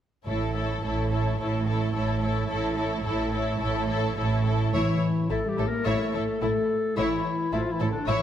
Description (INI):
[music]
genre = cinematic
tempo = 108 BPM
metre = 4/4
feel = straight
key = unclear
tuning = A4 = 440 Hz
[part]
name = dark studio violin section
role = melody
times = 0.3-8.2 s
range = A4 to E5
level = -36 LUFS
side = left 4 dB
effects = none
[part]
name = warm symphonic violin section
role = second line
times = 0.3-8.2 s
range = E4 to C#5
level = -32 LUFS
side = left 2 dB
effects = none
[part]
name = warm symphonic viola section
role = accompaniment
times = 0.3-8.2 s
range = E4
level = -32 LUFS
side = right 1 dB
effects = none
[part]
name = rich symphonic double bass section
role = bass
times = 0.3-8.2 s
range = A1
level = -30 LUFS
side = right 2 dB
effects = none
[part]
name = warm symphonic cello section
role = bass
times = 0.3-8.2 s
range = A2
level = -31 LUFS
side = right 3 dB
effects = none
[part]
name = timpani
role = percussion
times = 0.3-1.1, 4.7-5.5 s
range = A2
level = -36 LUFS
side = equal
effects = none
[part]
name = clear clarinet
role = second line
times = 4.7-8.2 s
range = D4 to Bb4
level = -30 LUFS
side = left 3 dB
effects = none
[part]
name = dark French horn section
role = sustained chords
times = 4.7-8.2 s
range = D3 to Bb3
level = -29 LUFS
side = left 3 dB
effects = none
[sound]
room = wet scoring stage reverb, RT60 1.4 s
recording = none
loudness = -24 LUFS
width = side -10 dB against mid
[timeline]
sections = 0.3-4.7 A section; 4.7-8.2 B section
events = none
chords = 0.3 A